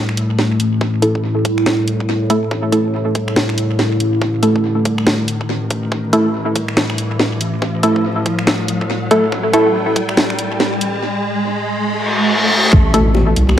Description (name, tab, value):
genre	deep dubstep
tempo	141 BPM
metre	4/4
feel	swing 60% on 16ths, half-time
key	A minor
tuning	A4 = 440 Hz
part	overtone-sweeping drone	sustained chords	0.0-13.6 s	A2	-20 LUFS	left 1 dB	chorus, built-in reverb
part	saturated sub bass	bass	0.0-13.6 s	A1 to C2	-23 LUFS	equal	high-pass filter
part	riser, reverse cymbal and impact	sound effects	3.6-13.6 s	none	-20 LUFS	equal	none
part	garage drum kit	drums	0.1-13.6 s	finger snaps, hi-hat, snare drum	-19 LUFS	equal	tape echo
part	electronic kick drum	drums	0.8-10.1, 12.7-12.8 s	none	-16 LUFS	equal	high-pass filter on kick
part	filtered dub chord stab	stabs	1.0-9.7, 12.9-13.1 s	A3 to A4	-17 LUFS	equal	chorus, dub echo
part	bongos	percussion	12.9-13.6 s	none	-20 LUFS	left 3 dB	dub echo
room	moderate plate reverb, RT60 1.3 s, digital ambience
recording	echo-heavy mix, vinyl crackle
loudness	-14 LUFS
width	side -10 dB against mid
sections	0.0-12.7 A section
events	build-up 0.0-12.7; riser 3.6-12.7; reverse cymbal 11.9-12.7; impact 12.7-13.6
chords	0.0 A5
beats	0.39 | 0.81 1.24 1.66 2.09 | 2.51 2.94 3.36 3.79 | 4.21 4.64 5.07 5.49 | 5.92 6.34 6.77 7.19 | 7.62 8.04 8.47 8.90 | 9.32 9.75 10.17 10.60 | 11.02 11.45 11.88 12.30 | 12.73 13.15 13.58